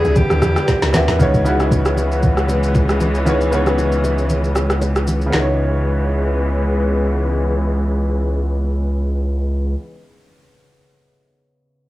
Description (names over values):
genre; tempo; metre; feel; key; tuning
amapiano; 116 BPM; 4/4; swing 55% on 16ths; C# minor; A4 = 439 Hz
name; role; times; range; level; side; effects
breathy alto saxophone; melody; 0.0-0.9 s; G4 to G#4; -21 LUFS; equal; cassette tape, tape echo
clear concert grand piano; accompaniment; 0.0-11.9 s; C#3 to F#5; -22 LUFS; equal; low-pass filter, cassette tape
clear studio string section; sustained chords; 0.0-9.7 s; C#3 to E4; -22 LUFS; left 1 dB; low-pass filter, cassette tape
woody log drum bass; bass; 0.0-1.2 s; C#2 to E2; -18 LUFS; equal; transformer saturation
smooth R&B drum kit; drums; 0.0-5.5 s; handclaps, kick drum, rim click, shaker, snare drum; -19 LUFS; equal; none
congas and bongos; percussion; 0.2-5.6 s; none; -24 LUFS; equal; none
saturated sub bass; bass; 1.2-9.7 s; C#2; -19 LUFS; equal; transformer saturation
room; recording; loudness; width
small room ambience; home recording on cassette; -15 LUFS; side -16 dB against mid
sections
0.0-1.2 A section; 1.2-5.3 B section; 5.3-9.5 C section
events
drum fill 0.7-1.2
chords
0.0 Em7; 1.2 C#m7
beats
0.16 0.68 | 1.20 1.71 2.23 2.75 | 3.27 3.78 4.30 4.82 | 5.33 5.85 6.37 6.88 | 7.40 7.92 8.44 8.95